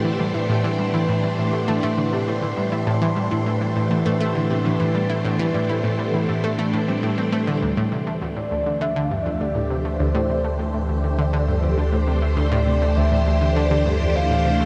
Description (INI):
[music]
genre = ambient, sequencer-driven space music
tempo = 101 BPM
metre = 4/4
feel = straight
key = A minor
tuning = A4 = 440 Hz
[part]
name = phased string machine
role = sustained chords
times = 0.0-14.7 s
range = E3 to C5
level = -28 LUFS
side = equal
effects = ensemble chorus, phaser
[part]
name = concert harp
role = arpeggios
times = 0.0-10.8 s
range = A2 to A4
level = -27 LUFS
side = equal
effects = low-pass filter, tape echo
[part]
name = analog pluck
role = riff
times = 0.0-14.7 s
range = D2 to E4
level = -27 LUFS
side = equal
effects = chorus, tape echo
[part]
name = wind-like tuned noise texture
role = texture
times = 0.0-7.6 s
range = G4 to C6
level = -36 LUFS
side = equal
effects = built-in reverb
[part]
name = round analog bass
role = bass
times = 7.6-14.7 s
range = D2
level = -24 LUFS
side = equal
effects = none
[part]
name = mellow horn-like synth lead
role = melody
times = 8.2-14.7 s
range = C5 to F5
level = -28 LUFS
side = equal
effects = chorus, tape echo
[sound]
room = wet huge ambient reverb, RT60 7.5 s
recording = cassette tape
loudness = -21 LUFS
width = mono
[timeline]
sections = 0.0-7.6 A section; 7.6-14.7 B section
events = none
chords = 0.0 Am; 7.6 D7(no3)